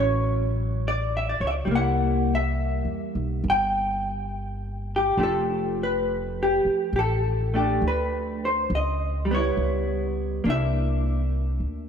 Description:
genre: jazz ballad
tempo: 68 BPM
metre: 4/4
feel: swing 68% on 8ths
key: unclear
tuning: A4 = 440 Hz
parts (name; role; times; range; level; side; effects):
- vintage hollow-body jazz guitar; accompaniment; 0.0-11.9 s; F3 to G5; -24 LUFS; left 1 dB; lush chorus
- upright bass; bass; 0.0-11.9 s; F1 to E2; -27 LUFS; equal; none
room: wet plate reverb, RT60 3.1 s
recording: dreamy mix soaked in reverb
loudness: -22 LUFS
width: side -7 dB against mid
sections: 0.0-11.9 A section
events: none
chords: 0.0 Dmaj9; 1.7 C7; 5.2 F69; 8.7 C#m7b5; 10.4 C9

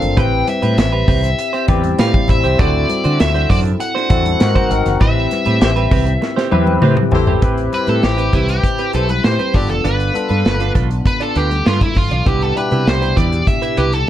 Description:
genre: polished 1980s jazz-funk pop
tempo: 99 BPM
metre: 4/4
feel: straight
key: A minor from 7.4 s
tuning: A4 = 440 Hz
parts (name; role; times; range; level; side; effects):
- nasal lead guitar with a parked wah; melody; 0.0-14.1 s; E4 to G5; -20 LUFS; left 1 dB; overdrive
- barky tine electric piano; accompaniment; 0.0-14.1 s; B2 to D5; -21 LUFS; left 3 dB; overdrive, lush chorus
- clean electric guitar; riff; 0.0-14.0 s; C4 to D5; -23 LUFS; right 8 dB; lush chorus
- mellow fretless electric bass; bass; 0.0-14.0 s; F1 to D3; -18 LUFS; equal; wide subtle chorus
- modern studio drum kit; drums; 0.0-14.1 s; hi-hat, kick drum, snare drum, toms; -17 LUFS; equal; none
- congas; percussion; 0.0-14.1 s; none; -29 LUFS; left 2 dB; none
- warm horn section; second line; 5.6-9.7, 13.8-13.9 s; E4 to D5; -24 LUFS; left 2 dB; none
room: light reverb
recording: dark, warm production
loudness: -13 LUFS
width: side -12 dB against mid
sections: 0.0-7.4 A section; 7.4-14.1 B section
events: band accent 5.0-7.4; drum fill 6.2-7.4; lead electric guitar solo 7.4-14.1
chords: 0.2 Am9; 2.6 D7; 4.4 G#9; 5.0 Am9; 9.5 G7; 12.3 Cmaj7

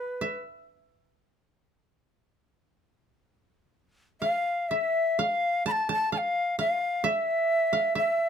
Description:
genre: japanese traditional, Japanese chamber music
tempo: 64 BPM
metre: 2/4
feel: rubato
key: unclear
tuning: A4 = 442 Hz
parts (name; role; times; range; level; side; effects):
- bright shakuhachi; melody; 0.0-0.4, 4.2-8.3 s; B4 to B5; -25 LUFS; left 1 dB; none
- koto; second line; 0.0-8.3 s; B4 to A5; -32 LUFS; right 3 dB; none
room: light reverb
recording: minimal, uncompressed stereo recording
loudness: -24 LUFS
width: side -8 dB against mid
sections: 0.0-8.3 A section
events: none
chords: none

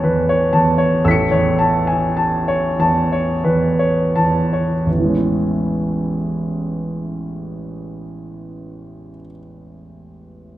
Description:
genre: classical, impressionist solo piano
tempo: 40-60 BPM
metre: 3/4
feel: rubato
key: A major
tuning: A4 = 440 Hz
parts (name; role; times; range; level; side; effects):
- clear grand piano; solo; 0.0-10.6 s; A1 to C#7; -16 LUFS; equal; none
room: moderate recital hall reverb, RT60 1.4 s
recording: none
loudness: -15 LUFS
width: side -14 dB against mid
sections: 0.0-4.9 A section; 4.9-8.8 B section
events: slowing down 0.0-4.9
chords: 0.0 Amaj9; 4.9 Amaj7

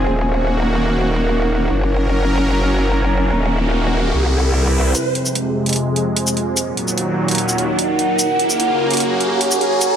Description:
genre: heavy wobble dubstep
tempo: 148 BPM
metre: 4/4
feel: half-time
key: unclear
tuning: A4 = 441 Hz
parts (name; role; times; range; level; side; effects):
- supersaw pad; sustained chords; 0.0-10.0 s; Eb2 to Bb4; -20 LUFS; equal; low-pass filter
- growl bass; bass; 0.0-4.9 s; Eb1 to C2; -17 LUFS; equal; chorus, overdrive
- deep dark ambient pad; texture; 0.0-10.0 s; C4 to Bb5; -21 LUFS; right 1 dB; chorus, built-in reverb
- riser; sound effects; 2.8-10.0 s; none; -24 LUFS; right 1 dB; none
- electronic hi-hat and shaker; drums; 4.9-9.9 s; none; -20 LUFS; right 1 dB; none
room: light reverb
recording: high-pass filter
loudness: -15 LUFS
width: side -8 dB against mid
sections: 0.0-4.9 A section; 4.9-10.0 B section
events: riser 2.8-4.9, 4.9-10.0; build-up 4.9-10.0; filter sweep on supersaw synth 4.9-10.0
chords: 0.1 Ebm; 1.7 Gb; 3.3 Ebm; 4.1 C; 4.9 Fm; 6.6 Ebm; 8.2 Gb

